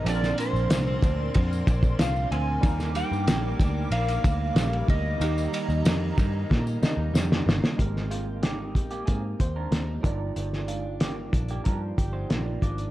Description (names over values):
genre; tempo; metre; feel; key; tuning
indie pop, bedroom pop; 93 BPM; 4/4; straight; Eb major; A4 = 440 Hz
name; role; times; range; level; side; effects
clean lap steel guitar; melody; 0.0-7.4 s; C5 to Ab5; -32 LUFS; equal; wide subtle chorus, tape echo
direct-recorded clean electric guitar; accompaniment; 0.0-12.9 s; G2 to C5; -35 LUFS; left 2 dB; analog chorus, warbly pitch drift
warm analog keys; accompaniment; 0.0-12.9 s; F3 to D5; -36 LUFS; right 6 dB; chorus
hollow soft pad; sustained chords; 0.0-7.8 s; G3 to D6; -38 LUFS; equal; ensemble chorus
vintage muted picked electric bass; bass; 0.0-12.9 s; G1 to Bb2; -28 LUFS; equal; none
cloth-damped thuddy drum kit; drums; 0.1-12.9 s; hi-hat, kick drum, ride cymbal, snare drum; -26 LUFS; equal; none
tambourine; percussion; 0.1-7.3 s; none; -46 LUFS; left 6 dB; none
electric guitar through a small old amp; second line; 8.1-12.8 s; Ab3 to D5; -38 LUFS; right 3 dB; lush chorus, tape echo
room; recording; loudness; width
small room ambience; dark, warm production; -23 LUFS; side -15 dB against mid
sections
0.0-7.8 A section; 7.8-12.9 B section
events
drum fill 6.5-7.8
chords
0.1 Bbadd9; 2.6 Ebmaj7; 5.2 Eb; 7.8 Abmaj9; 10.0 Ebmaj9/G